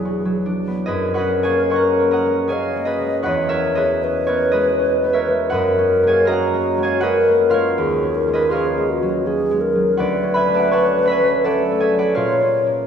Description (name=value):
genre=classical, impressionist duo for alto flute and harp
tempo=69-84 BPM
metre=3/4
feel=rubato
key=F# major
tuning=A4 = 440 Hz
part: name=mellow wooden-headed alto flute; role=melody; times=0.0-12.9 s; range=F#4 to D#5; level=-18 LUFS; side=left 1 dB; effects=none
part: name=concert harp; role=accompaniment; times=0.0-12.9 s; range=E1 to C#6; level=-19 LUFS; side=right 1 dB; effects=none
room=wet scoring stage reverb, RT60 2.1 s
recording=heard from further back in the room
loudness=-16 LUFS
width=side -7 dB against mid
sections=0.9-12.9 A section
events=none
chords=0.0 E9; 0.9 F#69; 3.3 E69; 5.5 F#69; 7.8 D#m11; 10.0 Dmaj7; 12.2 A#m7